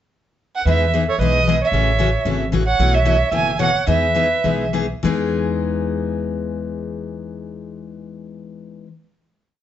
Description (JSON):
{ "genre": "acoustic string swing (jazz manouche)", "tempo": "191-226 BPM", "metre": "4/4", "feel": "swing 55% on 8ths", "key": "E major", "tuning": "A4 = 442 Hz", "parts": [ { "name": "warm violin", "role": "melody", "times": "0.6-4.7 s", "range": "C#5 to G#5", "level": "-19 LUFS", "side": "right 3 dB", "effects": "none" }, { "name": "breathy clarinet", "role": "second line", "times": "0.7-4.7 s", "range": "A4 to E5", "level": "-25 LUFS", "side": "right 5 dB", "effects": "none" }, { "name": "picked steel-string acoustic guitar", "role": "accompaniment", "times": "0.7-8.9 s", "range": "B2 to G#4", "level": "-22 LUFS", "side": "left 6 dB", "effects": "none" }, { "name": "upright bass", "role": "bass", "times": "0.7-8.8 s", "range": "F#1 to E2", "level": "-22 LUFS", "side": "right 1 dB", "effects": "none" } ], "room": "moderate studio reverb, RT60 0.8 s", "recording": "nothing above 7.8 kHz", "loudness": "-16 LUFS", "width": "side -11 dB against mid", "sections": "0.0-0.7 pickup bar; 0.7-5.0 A section; 5.0-7.6 final chord", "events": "slowing down 2.8-5.0", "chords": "0.0 N.C.; 0.7 Emaj7; 1.7 A6; 2.8 B9sus4; 3.9 Emaj7" }